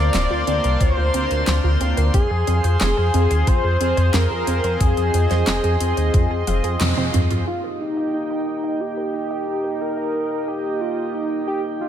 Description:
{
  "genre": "synthwave",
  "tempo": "90 BPM",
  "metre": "4/4",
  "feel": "straight",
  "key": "Eb major",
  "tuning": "A4 = 440 Hz",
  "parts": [
    { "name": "wide unison lead", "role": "melody", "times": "0.0-11.9 s", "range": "Eb4 to D5", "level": "-24 LUFS", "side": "equal", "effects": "cassette tape, tape echo" },
    { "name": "chorused pulse-width pad", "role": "sustained chords", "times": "0.0-11.9 s", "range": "Bb3 to C6", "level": "-27 LUFS", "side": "right 2 dB", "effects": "sidechain pumping" },
    { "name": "wide unison pluck", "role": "arpeggios", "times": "0.0-11.9 s", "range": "C4 to F5", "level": "-31 LUFS", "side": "right 5 dB", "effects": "tape echo" },
    { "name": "mellow synth brass", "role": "stabs", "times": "0.0-7.5 s", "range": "Bb3 to C5", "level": "-28 LUFS", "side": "left 4 dB", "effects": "chorus, tape echo" },
    { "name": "chorused synth bass", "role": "bass", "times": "0.0-7.4 s", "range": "D1 to F2", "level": "-20 LUFS", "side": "equal", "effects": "none" },
    { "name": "pop drum kit", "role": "drums", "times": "0.1-7.4 s", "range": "handclaps, hi-hat, snare drum, toms", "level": "-26 LUFS", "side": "equal", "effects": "low-pass filter on hats, small room ambience, low-pass filter on snare, low-pass filter on toms" },
    { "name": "electronic kick drum", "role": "drums", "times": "0.8-6.3 s", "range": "none", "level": "-18 LUFS", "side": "equal", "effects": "small room ambience" }
  ],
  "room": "light reverb",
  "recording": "none",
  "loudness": "-18 LUFS",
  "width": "side -10 dB against mid",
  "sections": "0.0-7.5 A section; 7.5-11.9 B section",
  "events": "drum fill 6.5-7.5; band accent 6.8-7.1",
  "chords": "0.0 Bbadd9/D; 2.1 Fm; 7.5 Eb",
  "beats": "0.14 0.81 1.47 | 2.14 2.81 3.47 4.14 | 4.81 5.47 6.14 6.81 | 7.47 8.14 8.81 9.47 | 10.14 10.81 11.47"
}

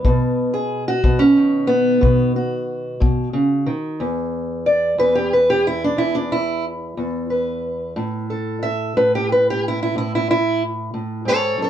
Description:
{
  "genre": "acoustic country blues, solo or duo",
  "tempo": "61 BPM (dotted quarters)",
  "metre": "12/8",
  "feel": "straight",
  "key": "E major",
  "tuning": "A4 = 440 Hz",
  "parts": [
    { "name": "fingerpicked steel-string acoustic guitar", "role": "melody", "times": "0.0-11.7 s", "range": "E2 to E5", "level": "-17 LUFS", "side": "equal", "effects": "none" },
    { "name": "kick drum", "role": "drums", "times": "0.0-3.2 s", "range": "none", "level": "-18 LUFS", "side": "left 1 dB", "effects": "none" }
  ],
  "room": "moderate studio reverb, RT60 0.5 s",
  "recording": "dark, warm production",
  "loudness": "-17 LUFS",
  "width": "side -10 dB against mid",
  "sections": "0.0-4.0 A section; 4.0-11.7 A section",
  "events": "steel-string acoustic guitar solo 0.0-11.7",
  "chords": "0.0 B; 4.0 E5; 8.0 F#m7 (rootless)",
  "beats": "| 0.04 1.03 2.02 3.01 | 4.00 4.99 5.98 6.97 | 7.96 8.95 9.94 10.94"
}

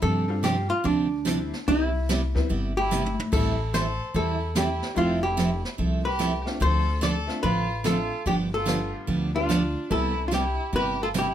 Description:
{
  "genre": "country, western swing",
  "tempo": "146 BPM",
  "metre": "4/4",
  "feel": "swing 65% on 8ths",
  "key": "C major",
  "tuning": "A4 = 437 Hz",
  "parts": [
    { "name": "archtop guitar, miked and amplified", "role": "melody", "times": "0.0-11.3 s", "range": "D4 to D5", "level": "-27 LUFS", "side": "left 1 dB", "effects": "none" },
    { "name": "picked steel-string acoustic guitar", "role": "accompaniment", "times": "0.0-11.3 s", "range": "C3 to A4", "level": "-27 LUFS", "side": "right 3 dB", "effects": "none" },
    { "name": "upright bass", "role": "bass", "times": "0.0-11.3 s", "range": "F1 to G2", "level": "-29 LUFS", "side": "left 1 dB", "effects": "none" },
    { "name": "jazz brush drum kit", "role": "drums", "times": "0.0-11.3 s", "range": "brushed snare drum, crash cymbal, hi-hat, kick drum, snare drum, toms", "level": "-31 LUFS", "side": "equal", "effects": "none" },
    { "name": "tack piano", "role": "accompaniment", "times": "0.3-10.2 s", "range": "G3 to G4", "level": "-34 LUFS", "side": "left 3 dB", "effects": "none" },
    { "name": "rich fiddle", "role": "second line", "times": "2.8-11.3 s", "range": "C4 to A4", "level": "-33 LUFS", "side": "right 3 dB", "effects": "none" }
  ],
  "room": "light reverb",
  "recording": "none",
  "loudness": "-23 LUFS",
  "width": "side -10 dB against mid",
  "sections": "0.0-11.3 A section",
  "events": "drum fill 2.9-3.3",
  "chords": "0.0 G7sus4; 1.7 Cmaj7; 3.3 Am7; 5.0 Fmaj9; 6.6 Dm7; 8.3 G7; 9.9 Cmaj7",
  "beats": "| 0.02 0.44 0.85 1.26 | 1.67 2.08 2.49 2.90 | 3.32 3.73 4.14 4.55 | 4.96 5.38 5.79 6.20 | 6.61 7.02 7.43 7.84 | 8.26 8.67 9.08 9.49 | 9.90 10.31 10.73 11.14"
}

